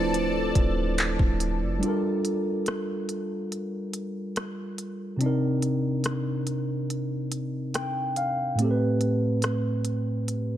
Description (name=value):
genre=contemporary R&B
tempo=71 BPM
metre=4/4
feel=straight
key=G minor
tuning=A4 = 441 Hz
part: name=mellow tine electric piano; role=accompaniment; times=0.0-10.6 s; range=A2 to G5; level=-26 LUFS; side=right 1 dB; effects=lush chorus
part: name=lush unison pad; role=sustained chords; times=0.0-1.8 s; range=A4 to A5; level=-33 LUFS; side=left 3 dB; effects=chorus, phaser
part: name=soft 808-style bass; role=bass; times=0.0-1.8 s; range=D1 to F1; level=-30 LUFS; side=equal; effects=none
part: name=trap drum kit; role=drums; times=0.1-10.5 s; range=handclaps, hi-hat, kick drum, rim click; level=-27 LUFS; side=equal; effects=vintage 12-bit sampler grit
room=light reverb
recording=none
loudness=-25 LUFS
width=side -12 dB against mid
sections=0.0-1.8 A section; 1.8-10.6 B section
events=tine electric piano solo 0.0-1.8; break 1.8-10.6; tine electric piano fill 7.3-8.6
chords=0.0 Dm7; 1.8 Gm7; 5.2 Cm7; 8.6 Am7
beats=0.14 0.98 | 1.83 2.67 3.52 4.36 | 5.21 6.05 6.90 7.74 | 8.59 9.43 10.28